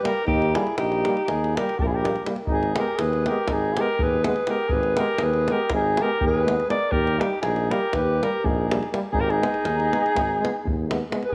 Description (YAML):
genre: balkan folk, Balkan brass band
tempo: 244 BPM (eighths)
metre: 9/8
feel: straight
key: unclear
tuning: A4 = 440 Hz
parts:
  - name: warm alto saxophone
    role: melody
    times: 0.0-11.3 s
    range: G4 to D5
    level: -27 LUFS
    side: equal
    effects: none
  - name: mellow flugelhorn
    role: second line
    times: 0.0-11.3 s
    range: Eb4 to Bb4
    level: -31 LUFS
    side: equal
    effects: slapback echo
  - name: bright trombone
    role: accompaniment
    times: 0.0-11.2 s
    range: G3 to Ab3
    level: -35 LUFS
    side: equal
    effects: none
  - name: warm euphonium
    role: accompaniment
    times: 0.1-11.2 s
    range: Bb3 to Cb4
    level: -37 LUFS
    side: equal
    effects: none
  - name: davul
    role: percussion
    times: 0.1-11.3 s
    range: none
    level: -32 LUFS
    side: equal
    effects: none
  - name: warm tuba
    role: bass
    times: 0.3-11.0 s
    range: Ab1 to Eb2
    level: -29 LUFS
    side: equal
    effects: none
room: moderate echo chamber reverb, RT60 1.5 s, small room ambience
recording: none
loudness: -23 LUFS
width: mono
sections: 0.0-11.3 A section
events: none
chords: 0.0 Eb; 2.5 Abm; 6.9 Eb; 9.1 Abm